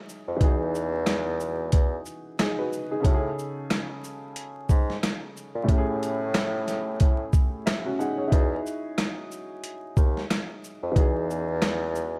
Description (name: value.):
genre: hip hop, boom-bap hip-hop.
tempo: 91 BPM.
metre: 4/4.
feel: swing 58% on 16ths.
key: E major.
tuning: A4 = 439 Hz.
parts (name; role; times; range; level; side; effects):
dark upright piano; accompaniment; 0.0-12.2 s; A2 to F#5; -34 LUFS; equal; cassette tape, high-pass filter, low-pass filter.
boom bap sampler-style drum kit; drums; 0.1-12.1 s; hi-hat, kick drum, rim click, shaker, snare drum; -26 LUFS; equal; none.
warm bassoon; bass; 0.3-12.2 s; D#2 to A#2; -31 LUFS; equal; none.
room: little or no reverb.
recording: vinyl crackle.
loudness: -26 LUFS.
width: mono.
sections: 0.0-12.2 A section.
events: none.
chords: 0.0 Emaj9; 3.0 Amaj7; 8.3 Emaj9.